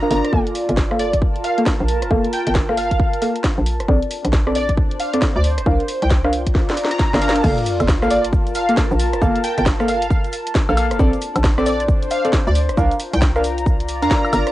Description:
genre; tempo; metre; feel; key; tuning
UK garage, two-step garage; 135 BPM; 4/4; swing 62% on 16ths; G minor; A4 = 439 Hz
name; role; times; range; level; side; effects
plucky unison lead; melody; 0.0-14.5 s; D5 to Bb5; -24 LUFS; equal; ensemble chorus, cassette tape, tape echo
deep mellow chord stab; stabs; 0.0-14.5 s; Bb3 to F5; -22 LUFS; equal; chorus, cassette tape, tape echo
warbly tape-like pad; texture; 0.0-14.5 s; D4 to Bb5; -25 LUFS; equal; chorus, built-in reverb, sidechain pumping, cassette tape
hollow knocking FM bass; bass; 0.1-14.4 s; F1 to F2; -21 LUFS; equal; none
house drum kit; drums; 0.1-14.5 s; crash cymbal, hi-hat, rim click, shaker, snare drum, woodblock; -24 LUFS; equal; cassette tape
electronic kick drum; drums; 0.3-14.2 s; none; -18 LUFS; equal; cassette tape
sub drop; sound effects; 7.4-9.2 s; none; -28 LUFS; equal; none
room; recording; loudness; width
light reverb, digital ambience; home recording on cassette, nothing above 10.5 kHz; -15 LUFS; side -15 dB against mid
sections
0.0-7.4 A section; 7.4-14.5 B section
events
filter sweep on synth stab 0.0-7.4; drum fill 6.6-7.4; drop 7.4-14.5; impact 7.4-9.2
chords
0.3 Gm9; 3.9 Bbmaj9; 5.7 C9sus4; 7.4 Gm9; 11.0 Bbmaj9; 12.8 C9sus4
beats
| 0.33 0.77 1.22 1.66 | 2.11 2.55 3.00 3.44 | 3.88 4.33 4.77 5.22 | 5.66 6.11 6.55 7.00 | 7.44 7.88 8.33 8.77 | 9.22 9.66 10.11 10.55 | 11.00 11.44 11.88 12.33 | 12.77 13.22 13.66 14.11

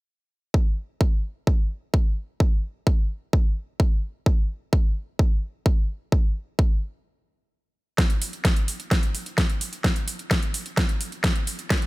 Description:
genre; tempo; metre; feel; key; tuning
EDM; 129 BPM; 4/4; straight; none; none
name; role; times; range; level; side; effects
electronic kick drum; drums; 0.5-11.8 s; none; -20 LUFS; equal; overdrive
big-room dance drum kit; drums; 8.0-11.9 s; hi-hat, snare drum; -26 LUFS; equal; overdrive
room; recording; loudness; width
little or no reverb; none; -22 LUFS; side -22 dB against mid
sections
0.5-8.0 A section; 8.0-11.9 B section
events
break 7.1-8.0; build-up 8.0-11.9; drum fill 8.0-11.9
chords
none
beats
| 0.54 1.01 1.47 1.94 | 2.40 2.87 3.33 3.80 | 4.26 4.73 5.19 5.66 | 6.12 6.59 7.05 7.52 | 7.98 8.45 8.91 9.38 | 9.84 10.31 10.77 11.24 | 11.70

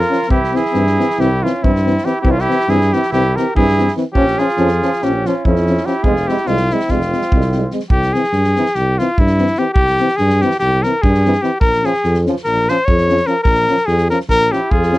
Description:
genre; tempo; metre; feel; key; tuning
balkan folk, Balkan brass band; 289 BPM (eighths); 9/8; straight; unclear; A4 = 435 Hz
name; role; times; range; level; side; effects
warm cornet; melody; 0.0-15.0 s; E4 to Db5; -17 LUFS; left 1 dB; none
warm flugelhorn; second line; 0.0-7.7, 14.5-15.0 s; C4 to G4; -23 LUFS; right 5 dB; none
mellow tuba; bass; 0.0-15.0 s; F1 to G2; -17 LUFS; equal; none
loose indie drum kit; percussion; 0.0-15.0 s; kick drum, snare drum; -20 LUFS; equal; none
mellow euphonium; accompaniment; 0.1-15.0 s; C4 to Db4; -20 LUFS; left 4 dB; none
warm trombone; accompaniment; 0.1-15.0 s; E3 to Ab3; -23 LUFS; right 5 dB; none
room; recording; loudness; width
little or no reverb; dry, close 1970s-style studio recording; -13 LUFS; side -17 dB against mid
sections
0.0-7.9 A section; 7.9-15.0 A section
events
speeding up 0.0-15.0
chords
0.3 C; 4.1 Bbm; 6.0 Fm; 7.9 C; 11.6 Bbm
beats
0.09 | 0.30 0.52 0.73 0.95 1.16 1.38 1.59 1.81 2.02 | 2.23 2.45 2.66 2.87 3.09 3.30 3.51 3.72 3.93 | 4.14 4.36 4.57 4.78 4.99 5.20 5.41 5.62 5.82 | 6.03 6.24 6.45 6.66 6.87 7.08 7.28 7.49 7.70 | 7.91 8.11 8.32 8.53 8.73 8.94 9.15 9.35 9.56 | 9.77 9.97 10.18 10.38 10.59 10.79 11.00 11.21 11.41 | 11.62 11.82 12.03 12.23 12.43 12.64 12.84 13.04 13.25 | 13.45 13.65 13.86 14.06 14.26 14.46 14.67 14.87

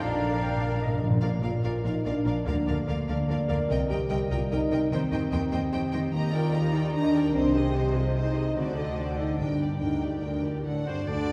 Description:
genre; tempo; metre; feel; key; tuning
classical; 147 BPM; 3/4; straight; Bb major, G minor from 6.1 s; A4 = 440 Hz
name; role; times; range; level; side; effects
clear studio violin section; melody; 0.0-11.3 s; C5 to Bb5; -42 LUFS; equal; none
bright oboe; second line; 0.0-1.0, 10.9-11.3 s; C5 to F5; -42 LUFS; equal; none
silver concert flute; second line; 0.0-1.0, 11.1-11.3 s; D5 to Bb5; -40 LUFS; equal; none
warm clarinet; second line; 0.0-1.1, 11.1-11.3 s; D4 to G5; -41 LUFS; equal; none
warm symphonic violin section; second line; 0.0-11.3 s; C4 to Eb5; -42 LUFS; equal; none
mellow bassoon; accompaniment; 0.0-1.0, 11.1-11.3 s; D3 to D4; -45 LUFS; equal; none
rich symphonic viola section; accompaniment; 0.0-11.1 s; D4 to C5; -42 LUFS; equal; none
mellow French horn section; sustained chords; 0.0-11.3 s; C3 to G4; -32 LUFS; equal; none
concert harp; arpeggios; 0.0-11.3 s; G2 to Eb5; -34 LUFS; equal; none
rich studio double bass section; bass; 0.0-11.3 s; G1 to Eb2; -35 LUFS; equal; none
rich symphonic cello section; bass; 0.0-11.3 s; D2 to D4; -35 LUFS; equal; none
timpani; percussion; 0.0-1.2 s; Bb2; -32 LUFS; equal; none
warm trombone section; sustained chords; 11.1-11.3 s; D3; -34 LUFS; equal; none
room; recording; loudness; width
wet scoring stage reverb, RT60 1.9 s; heard from further back in the room; -27 LUFS; mono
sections
0.0-1.2 A section; 1.2-11.1 B section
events
timpani fill 0.0-1.2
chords
0.0 Bb; 2.5 Bb/D; 3.7 Cm7; 4.9 Cm/Eb; 6.1 Ebmaj7; 7.3 Ab/C; 8.6 D7b9; 9.4 Gm; 9.8 Gm/D; 10.7 D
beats
| 0.02 0.42 0.81 | 1.22 1.63 2.05 | 2.46 2.87 3.28 | 3.69 4.10 4.51 | 4.91 5.32 5.72 | 6.13 6.53 6.94 | 7.35 7.75 8.16 | 8.57 8.98 9.39 | 9.81 10.24 10.66 | 11.08

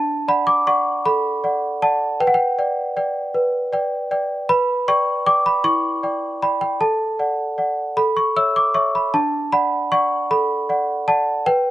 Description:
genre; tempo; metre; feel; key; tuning
classical, lullaby for celesta; 52 BPM (dotted quarters); 6/8; straight; D major; A4 = 440 Hz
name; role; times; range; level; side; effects
worn celesta; solo; 0.0-11.7 s; D4 to E6; -17 LUFS; equal; none
room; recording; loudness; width
light reverb; none; -17 LUFS; side -14 dB against mid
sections
0.0-11.7 A section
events
none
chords
0.0 D; 2.2 G/B; 4.5 Em7/B; 6.8 D/A; 8.0 A; 9.1 D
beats
1.06 | 2.20 3.35 | 4.49 5.64 | 6.80 7.97 | 9.14 10.29 | 11.45

